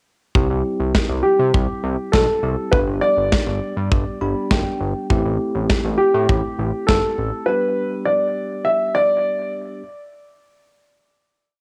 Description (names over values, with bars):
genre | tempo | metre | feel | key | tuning
synth-pop | 101 BPM | 4/4 | straight | G major | A4 = 438 Hz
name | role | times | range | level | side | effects
bell-like tine electric piano | accompaniment | 0.4-9.8 s | G3 to B5 | -28 LUFS | equal | cassette tape
fat analog bass | bass | 0.4-7.3 s | F#1 to C3 | -25 LUFS | equal | none
modern studio drum kit | drums | 0.4-7.0 s | kick drum, snare drum | -21 LUFS | equal | cassette tape
dark baby grand piano | melody | 1.2-9.5 s | G4 to E5 | -22 LUFS | equal | cassette tape, analog delay
room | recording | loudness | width
light reverb | home recording on cassette | -19 LUFS | mono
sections
0.4-9.9 verse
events
tine electric piano fill 3.9-5.1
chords
0.4 C; 2.7 G; 5.1 Am7; 7.5 G